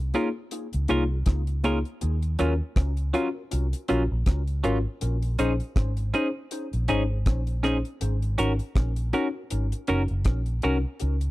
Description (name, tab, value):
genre	lovers rock reggae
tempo	80 BPM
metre	4/4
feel	swing 56% on 16ths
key	unclear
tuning	A4 = 440 Hz
part	vintage muted fingered electric bass	bass	0.0-11.3 s	Gb1 to Eb2	-26 LUFS	equal	none
part	tine electric piano	accompaniment	0.1-10.8 s	Bb3 to C5	-29 LUFS	left 2 dB	overdrive, analog chorus, tape echo
part	clean electric guitar	stabs	0.1-10.8 s	Gb3 to Bb4	-28 LUFS	right 4 dB	none
part	deep reggae drum kit	drums	0.1-11.3 s	hi-hat, kick drum, rim click	-27 LUFS	equal	tape echo
room	studio reverb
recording	dry, close 1970s-style studio recording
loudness	-24 LUFS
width	side -18 dB against mid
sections	0.0-11.3 A section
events	none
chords	0.0 Db6; 2.0 Ebm9; 5.0 Bbm11; 8.0 Ab9sus4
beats	0.52 1.27 | 2.02 2.77 3.52 4.26 | 5.01 5.76 6.51 7.26 | 8.01 8.76 9.51 10.26 | 11.01